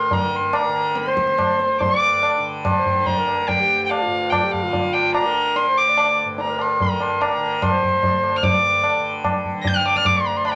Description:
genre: indian classical, Hindustani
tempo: 145 BPM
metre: 4/4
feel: straight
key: D raga malkauns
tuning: A4 = 443 Hz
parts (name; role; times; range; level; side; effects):
- dark violin; melody; 0.0-10.5 s; F5 to Bb6; -22 LUFS; equal; none
- warm alto saxophone; second line; 0.0-10.6 s; F4 to G5; -28 LUFS; equal; none
- tanpura; drone; 0.0-10.6 s; D2 to D3; -32 LUFS; equal; none
- tabla; percussion; 0.1-10.6 s; none; -26 LUFS; equal; none
room: moderate studio reverb, RT60 0.6 s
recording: none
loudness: -19 LUFS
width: mono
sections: 0.0-1.8 A section; 1.8-10.6 B section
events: speeding up 0.0-10.6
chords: none

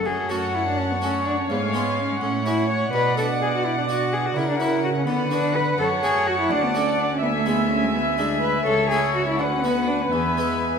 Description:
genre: classical, baroque-style concerto movement with solo episodes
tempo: 84 BPM (dotted quarters)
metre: 6/8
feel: straight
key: F# minor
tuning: A4 = 441 Hz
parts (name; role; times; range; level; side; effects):
- dark cello; melody; 0.0-10.8 s; G#3 to C#5; -24 LUFS; left 2 dB; none
- harpsichord; accompaniment; 0.0-10.8 s; C#2 to F#4; -30 LUFS; left 1 dB; none
- warm chamber violin section; melody; 0.1-10.8 s; F#5 to A5; -34 LUFS; left 1 dB; none
- warm chamber violin section; second line; 0.1-10.8 s; E5 to F#5; -28 LUFS; left 3 dB; none
- dark chamber viola section; accompaniment; 0.1-10.8 s; A#4 to E5; -26 LUFS; right 2 dB; none
- dark chamber cello section; bass; 0.1-10.8 s; C#2 to D3; -28 LUFS; right 4 dB; none
room: wet concert hall reverb, RT60 1.9 s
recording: minimal, uncompressed stereo recording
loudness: -20 LUFS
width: side -6 dB against mid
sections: 0.1-10.8 A section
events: none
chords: 0.1 F#m; 1.5 C#/G#; 2.2 F#m/A; 2.9 Bm; 4.4 F#/C#; 5.1 Bm/D; 5.8 F#m; 6.5 D; 7.2 E7/D; 8.7 A/C#; 9.4 Bm/D; 10.1 E

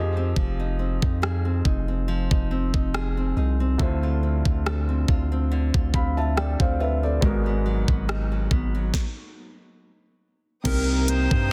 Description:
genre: contemporary R&B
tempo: 70 BPM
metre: 4/4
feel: swing 54% on 16ths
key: unclear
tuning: A4 = 440 Hz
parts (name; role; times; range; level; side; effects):
- felt-muted upright piano; accompaniment; 0.0-11.5 s; Ab2 to B5; -32 LUFS; equal; none
- nylon-string guitar; arpeggios; 0.0-11.5 s; Ab2 to A4; -33 LUFS; equal; digital delay
- long sustained 808-style bass; bass; 0.0-11.5 s; F1 to G2; -27 LUFS; equal; none
- trap drum kit; drums; 0.4-11.5 s; crash cymbal, hi-hat, kick drum, rim click, snare drum; -27 LUFS; equal; soft clipping on snare
- glassy synth bell; texture; 10.6-11.5 s; G5 to Bb5; -44 LUFS; equal; chorus, phaser, digital delay
- breathy alto saxophone; melody; 10.7-11.5 s; Bb4 to C5; -31 LUFS; equal; none
- warm studio string section; sustained chords; 10.7-11.5 s; C4 to Eb6; -39 LUFS; equal; none
room: small room reverb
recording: dense, heavily limited modern master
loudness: -24 LUFS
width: mono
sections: 0.0-10.7 A section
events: stop 8.9-10.7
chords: 0.0 Fm7; 3.8 Dm7; 7.2 Abm7; 10.7 Cm7

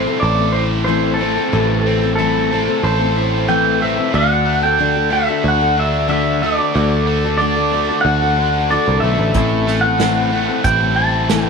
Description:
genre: folk rock and heartland rock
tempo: 92 BPM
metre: 4/4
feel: straight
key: A dorian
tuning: A4 = 440 Hz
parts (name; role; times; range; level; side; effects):
- pedal steel guitar; melody; 0.0-11.5 s; A4 to A5; -18 LUFS; right 1 dB; none
- picked steel-string acoustic guitar; accompaniment; 0.0-11.5 s; A2 to A4; -21 LUFS; left 10 dB; none
- biting overdriven guitar; riff; 0.0-11.5 s; A2 to A4; -21 LUFS; right 2 dB; none
- picked electric bass; bass; 0.0-11.5 s; A1 to D2; -20 LUFS; right 2 dB; none
- unplugged drum kit; drums; 9.3-11.5 s; hi-hat, kick drum, snare drum; -21 LUFS; right 5 dB; none
room: moderate echo chamber reverb, RT60 2.3 s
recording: 1960s-style stereo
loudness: -14 LUFS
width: side -5 dB against mid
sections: 0.0-11.5 A section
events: none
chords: 0.0 Am; 4.1 D; 9.4 Am

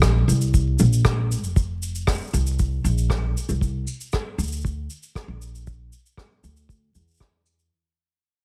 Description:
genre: folktronica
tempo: 117 BPM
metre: 4/4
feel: straight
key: unclear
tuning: A4 = 440 Hz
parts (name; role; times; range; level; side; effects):
- upright bass; bass; 0.0-7.7 s; F1 to E2; -24 LUFS; equal; none
- kick drum; drums; 0.0-7.3 s; none; -23 LUFS; equal; none
- rim click and cabasa; drums; 0.0-7.7 s; none; -32 LUFS; equal; none
room: little or no reverb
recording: vinyl crackle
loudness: -23 LUFS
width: mono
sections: 0.0-7.7 A section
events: fade-out 0.0-7.7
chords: none

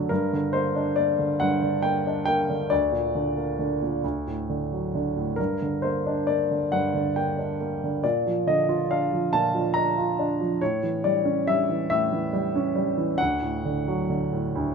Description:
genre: classical, lyrical solo piano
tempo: 46 BPM (dotted quarters)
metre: 6/8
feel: rubato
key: unclear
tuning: A4 = 440 Hz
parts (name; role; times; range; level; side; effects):
- warm baby grand piano; solo; 0.0-14.7 s; D2 to Bb5; -22 LUFS; equal; none
room: light reverb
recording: minimal, uncompressed stereo recording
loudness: -22 LUFS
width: side -5 dB against mid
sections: 0.0-14.7 A section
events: none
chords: 0.1 Gm; 2.7 Bb/D; 4.0 D; 5.4 Gm; 8.0 Bb; 10.6 A7; 13.2 D

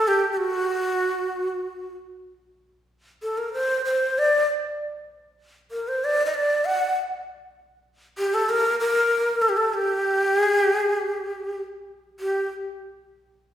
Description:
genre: arabic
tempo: free time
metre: none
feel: none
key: G maqam nahawand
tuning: A4 = 440 Hz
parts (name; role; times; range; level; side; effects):
- breathy ney; solo; 0.0-12.5 s; F#4 to F#5; -21 LUFS; equal; slapback echo
room: wet recital hall reverb, RT60 1.5 s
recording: heard from further back in the room, faint mains hum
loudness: -21 LUFS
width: side -11 dB against mid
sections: 0.0-12.2 A section; 12.2-13.5 B section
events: none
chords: none

